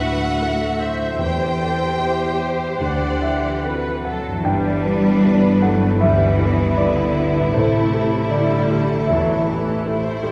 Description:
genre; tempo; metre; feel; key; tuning
cinematic, emotional film score for orchestra; 71-79 BPM; 4/4; rubato; unclear; A4 = 440 Hz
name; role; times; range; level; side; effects
rich studio violin section; melody; 0.0-10.3 s; A4 to G5; -31 LUFS; equal; none
rich studio violin section; second line; 0.0-10.3 s; D4 to E5; -28 LUFS; equal; none
rich studio viola section; accompaniment; 0.0-10.3 s; E3 to F#5; -30 LUFS; equal; none
warm grand piano; accompaniment; 0.0-10.3 s; D2 to G5; -25 LUFS; equal; none
concert harp; arpeggios; 0.0-10.3 s; G2 to F#5; -29 LUFS; equal; none
rich studio cello section; bass; 0.0-9.5 s; D2 to G3; -25 LUFS; equal; none
mellow French horn section; sustained chords; 4.5-10.3 s; A3 to E4; -29 LUFS; equal; none
clear studio double bass section; bass; 4.5-10.3 s; G1 to A1; -26 LUFS; equal; none
room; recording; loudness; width
wet scoring stage reverb, RT60 1.8 s; heard from further back in the room; -19 LUFS; mono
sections
0.0-4.5 A section; 4.5-10.3 A section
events
none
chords
0.0 Dadd9; 1.2 C/E; 2.8 D7; 4.5 G6; 7.5 Am7

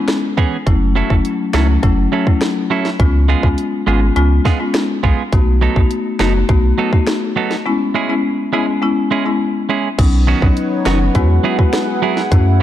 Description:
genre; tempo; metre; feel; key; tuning
dancehall; 103 BPM; 4/4; straight; unclear; A4 = 441 Hz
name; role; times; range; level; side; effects
marimba with medium mallets; accompaniment; 0.0-12.6 s; F#3 to F#4; -18 LUFS; left 4 dB; sidechain pumping
island pop drum kit; drums; 0.1-12.5 s; crash cymbal, finger snaps, hi-hat, kick drum, rim click, snare drum; -16 LUFS; equal; none
clean electric guitar; arpeggios; 0.4-12.6 s; D#3 to A4; -21 LUFS; right 7 dB; none
warm sub bass; bass; 0.7-12.6 s; F#1 to F#2; -14 LUFS; equal; none
lush unison pad; sustained chords; 10.3-12.6 s; D#4 to F#5; -22 LUFS; right 2 dB; chorus, sidechain pumping
room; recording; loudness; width
light reverb, digital ambience; dark, warm production; -13 LUFS; side -12 dB against mid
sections
0.0-10.0 A section; 10.0-12.6 B section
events
break 7.7-10.0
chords
0.0 E6; 0.7 F#m7; 3.0 C#7; 5.3 B7; 7.7 E6; 10.0 Badd9; 11.2 Eadd9

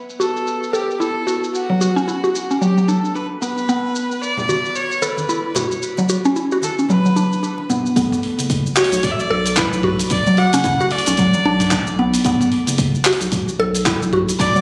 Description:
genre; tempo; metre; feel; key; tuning
organic downtempo; 112 BPM; 4/4; swing 59% on 16ths; B minor; A4 = 439 Hz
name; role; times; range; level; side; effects
bronze singing bowl; texture; 0.0-14.6 s; A3 to B4; -35 LUFS; equal; none
dusty soul sampler-style drum kit; drums; 0.1-14.6 s; handclaps, hi-hat, shaker, toms; -26 LUFS; equal; low-pass filter on hats, low-pass filter on perc, low-pass filter on toms, low-pass filter on snare, low-pass filter on room
clear kamancheh; melody; 0.2-14.6 s; F#4 to F#5; -25 LUFS; equal; digital delay
mallet-like synth pluck; arpeggios; 0.2-14.6 s; F#3 to A4; -21 LUFS; equal; chorus, phaser, delay
congas; percussion; 4.4-7.8 s; none; -32 LUFS; equal; none
round analog bass; bass; 8.0-14.5 s; F#1 to B1; -24 LUFS; equal; none
electronic kick drum; drums; 8.0-14.5 s; none; -26 LUFS; equal; none
room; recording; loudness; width
wet digital room reverb, RT60 1.1 s, digital ambience; recorded on a phone in the room, club reverb, compression; -18 LUFS; mono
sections
0.0-8.0 A section; 8.0-14.6 B section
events
none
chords
0.0 B5; 8.0 Bm7

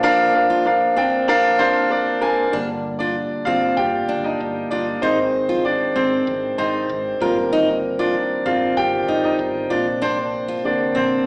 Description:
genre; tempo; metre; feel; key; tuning
piano-driven pop; 96 BPM; 4/4; straight; unclear; A4 = 441 Hz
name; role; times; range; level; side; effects
warm concert grand piano; accompaniment; 0.0-11.3 s; Bb2 to Ab5; -22 LUFS; equal; none
percussive tonewheel organ; sustained chords; 0.0-11.3 s; Bb2 to D4; -28 LUFS; equal; overdrive, stopped rotary speaker
picked steel-string acoustic guitar; riff; 0.0-11.3 s; C4 to F4; -27 LUFS; equal; none
woody fretless electric bass; bass; 2.5-11.2 s; G1 to Bb1; -41 LUFS; equal; none
room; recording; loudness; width
wet recital hall reverb, RT60 1.3 s; recorded in a church or concert hall, small speaker sound; -20 LUFS; mono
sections
0.0-2.5 A section; 2.5-11.3 B section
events
break 0.0-2.5; grand piano solo 2.5-11.3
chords
0.0 Bb; 2.5 Gm; 5.0 Ab; 7.2 Eb6/G; 9.7 Bbadd9

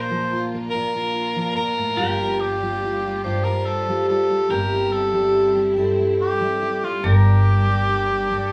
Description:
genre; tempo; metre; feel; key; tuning
acoustic folk-pop ballad; 71 BPM; 3/4; straight; G minor; A4 = 440 Hz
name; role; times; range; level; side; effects
clear cor anglais; melody; 0.0-8.5 s; F4 to C5; -26 LUFS; equal; none
pedal steel guitar; second line; 0.0-8.5 s; G4 to Bb4; -33 LUFS; equal; none
fingerpicked steel-string acoustic guitar; accompaniment; 0.0-8.5 s; G2 to Bb4; -25 LUFS; equal; none
rich studio string section; sustained chords; 0.0-8.5 s; G3 to F4; -36 LUFS; equal; none
vibraphone with medium mallets; arpeggios; 0.0-8.5 s; F4 to D5; -31 LUFS; equal; none
upright bass; bass; 0.0-8.4 s; G1 to Bb1; -24 LUFS; equal; none
room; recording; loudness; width
moderate studio reverb, RT60 0.5 s; band playing live in one room, small room ambience; -21 LUFS; mono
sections
0.0-8.5 A section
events
none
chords
0.0 Bb; 2.0 Gm7; 4.5 C/G; 7.0 Gm

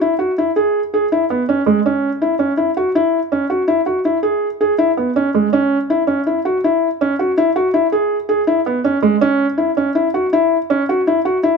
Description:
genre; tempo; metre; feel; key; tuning
contemporary instrumental, contemporary; 163 BPM; 5/4; straight; C# minor; A4 = 440 Hz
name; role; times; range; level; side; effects
felt-muted upright piano; solo; 0.0-11.5 s; G#3 to G#4; -14 LUFS; equal; none
room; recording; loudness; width
light reverb; close, detailed microphones; -14 LUFS; side -5 dB against mid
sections
0.0-11.6 A section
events
none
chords
none

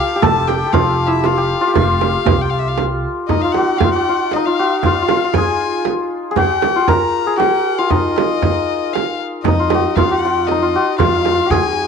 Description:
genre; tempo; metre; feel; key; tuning
Persian modal ensemble; 117 BPM; 3/4; straight; F dastgah mahur, F dastgah shur from 3.3 s; A4 = 440 Hz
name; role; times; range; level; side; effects
santur; melody; 0.0-11.9 s; Eb4 to Bb4; -16 LUFS; left 2 dB; tape echo
dark violin; second line; 0.0-11.9 s; Eb5 to Bb5; -21 LUFS; left 10 dB; none
upright bass; bass; 0.2-3.0, 9.5-11.9 s; F1 to F2; -22 LUFS; right 1 dB; none
frame drum; percussion; 0.2-11.6 s; none; -19 LUFS; right 12 dB; none
tombak; percussion; 0.2-11.6 s; none; -22 LUFS; left 2 dB; none
room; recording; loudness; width
light reverb; 1960s-style stereo with parts hard left and right; -13 LUFS; side -6 dB against mid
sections
0.0-3.3 A section; 3.3-11.9 B section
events
none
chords
none

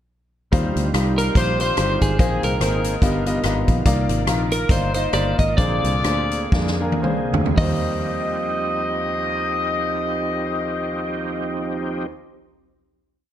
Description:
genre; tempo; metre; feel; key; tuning
uptempo gospel; 108-144 BPM; 4/4; swing 57% on 8ths; Eb major; A4 = 440 Hz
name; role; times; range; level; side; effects
clear concert grand piano; accompaniment; 0.5-12.1 s; Eb2 to A#5; -26 LUFS; left 2 dB; none
overdriven tonewheel organ; sustained chords; 0.5-12.1 s; D3 to D5; -28 LUFS; right 3 dB; slow rotary speaker, chorus vibrato
fingered electric bass; bass; 0.5-12.1 s; G1 to F2; -23 LUFS; equal; none
swinging big-band drum kit; drums; 0.5-7.7 s; hi-hat, kick drum, rim click, snare drum, toms; -22 LUFS; equal; none
clean electric guitar; melody; 1.2-12.1 s; Ab4 to Eb5; -27 LUFS; right 4 dB; none
warm horn section; melody; 1.2-12.1 s; C4 to Eb5; -26 LUFS; left 4 dB; none
room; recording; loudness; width
light reverb, small room ambience; dark, warm production; -18 LUFS; side -10 dB against mid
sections
0.5-7.6 breakdown; 7.6-12.0 final chord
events
grand piano fill 3.2-3.9; slowing down 3.9-7.6; drum fill 6.5-7.6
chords
0.5 Eb69; 2.2 Bb9sus4; 3.0 G7alt; 3.9 Cm11; 5.6 Bb9; 7.6 Eb69

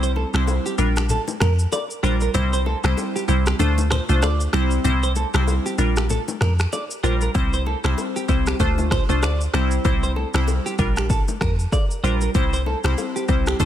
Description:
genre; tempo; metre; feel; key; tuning
afrobeats; 96 BPM; 4/4; swing 58% on 16ths; C mixolydian; A4 = 439 Hz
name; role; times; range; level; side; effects
glassy wavetable pluck; accompaniment; 0.0-13.7 s; G3 to C5; -23 LUFS; left 1 dB; chorus
clean electric guitar; riff; 0.0-13.7 s; G4 to D5; -28 LUFS; right 4 dB; wide subtle chorus, tape echo
deep log drum bass; bass; 0.0-13.7 s; Bb1 to F2; -21 LUFS; equal; none
afro-pop drum kit; drums; 0.0-13.7 s; finger snaps, kick drum, rim click, shaker; -25 LUFS; equal; overdrive, vintage 12-bit sampler grit, soft clipping on snare
bongos and congas; percussion; 0.2-13.7 s; none; -30 LUFS; left 5 dB; none
room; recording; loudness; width
little or no reverb; dense, heavily limited modern master; -18 LUFS; side -11 dB against mid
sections
0.0-13.7 A section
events
break 0.0-7.3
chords
0.0 C; 0.8 Bb6; 2.4 C; 3.6 Dm7; 4.5 C; 5.8 Bb6; 7.3 C; 8.6 Dm7; 9.5 C; 10.8 Bb6; 12.3 C

